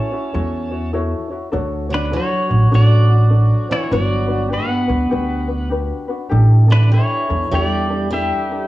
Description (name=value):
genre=Hawaiian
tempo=100 BPM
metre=4/4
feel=swing 63% on 8ths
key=D major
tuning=A4 = 440 Hz
part: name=pedal steel guitar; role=melody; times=0.0-8.7 s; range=D4 to A5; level=-22 LUFS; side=left 1 dB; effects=slapback echo
part: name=picked plugged-in swing-style acoustic guitar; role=second line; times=0.0-8.7 s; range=D3 to C#4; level=-24 LUFS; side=right 2 dB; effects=slapback echo
part: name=ukulele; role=accompaniment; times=0.0-8.7 s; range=D4 to C#5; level=-24 LUFS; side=left 4 dB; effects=none
part: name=upright bass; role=bass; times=0.3-8.3 s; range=G1 to E2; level=-15 LUFS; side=right 1 dB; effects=none
room=light reverb, small room reverb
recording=worn, warbling old tape, cassette tape, warbly pitch drift, small room ambience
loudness=-14 LUFS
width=side -16 dB against mid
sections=0.0-1.5 A section; 1.5-8.7 B section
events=none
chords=0.0 A6; 1.5 Dmaj7; 3.9 Gmaj7; 6.3 A7sus4